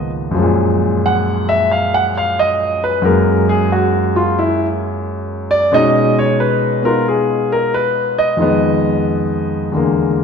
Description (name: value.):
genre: solo jazz.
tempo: 90 BPM.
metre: 4/4.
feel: swing 68% on 8ths.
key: unclear.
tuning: A4 = 440 Hz.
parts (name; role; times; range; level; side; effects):
warm concert grand piano; solo; 0.0-10.2 s; Db2 to Gb5; -13 LUFS; equal; none.
room: wet scoring stage reverb, RT60 1.7 s.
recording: recorded in a church or concert hall.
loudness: -13 LUFS.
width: side -6 dB against mid.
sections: 0.4-10.2 A section.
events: grand piano solo 0.4-10.2.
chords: 0.4 Gbmaj9; 3.0 Gbadd9; 5.7 B69; 8.4 Fm7b5; 9.7 E7#11.